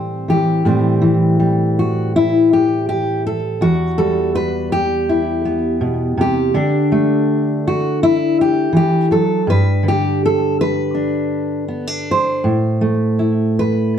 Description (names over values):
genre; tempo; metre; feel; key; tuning
folk, solo fingerstyle acoustic guitar; 81 BPM; 4/4; straight; A dorian; A4 = 440 Hz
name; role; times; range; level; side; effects
fingerpicked steel-string acoustic guitar; solo; 0.0-14.0 s; E2 to C5; -14 LUFS; equal; slapback echo
room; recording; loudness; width
little or no reverb; dry, close 1970s-style studio recording; -14 LUFS; side -8 dB against mid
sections
0.7-14.0 A section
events
none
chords
0.0 Am7; 3.6 Emadd9; 6.5 Dsus2; 9.5 G; 12.4 Am